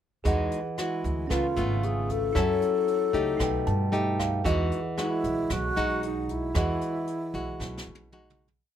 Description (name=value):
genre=bossa nova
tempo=114 BPM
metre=4/4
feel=straight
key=E major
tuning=A4 = 440 Hz
part: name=bell-like tine electric piano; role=accompaniment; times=0.2-8.7 s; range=C#4 to A5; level=-34 LUFS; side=right 6 dB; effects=none
part: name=nylon-string guitar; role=accompaniment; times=0.2-8.6 s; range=B2 to A4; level=-30 LUFS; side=left 1 dB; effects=none
part: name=upright bass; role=bass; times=0.3-8.6 s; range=G#1 to G2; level=-30 LUFS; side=equal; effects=none
part: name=jazz brush drum kit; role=drums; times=0.3-8.6 s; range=hi-hat, kick drum, rim click, snare drum, toms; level=-34 LUFS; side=right 1 dB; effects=none
part: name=mellow hollow alto flute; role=melody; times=0.8-8.1 s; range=D#4 to A4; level=-29 LUFS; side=left 4 dB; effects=none
room=light reverb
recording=none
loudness=-25 LUFS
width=side -10 dB against mid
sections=0.3-8.7 A section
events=tine electric piano fill 3.4-4.5; fade-out 6.6-8.7; drum fill 7.6-8.7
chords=0.3 Emaj9; 1.3 C#7b13; 2.4 F#m7; 3.4 Baug7; 4.5 Emaj9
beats=| 0.26 0.78 1.31 1.83 | 2.36 2.88 3.41 3.93 | 4.46 4.98 5.51 6.03 | 6.55 7.08 7.61 8.13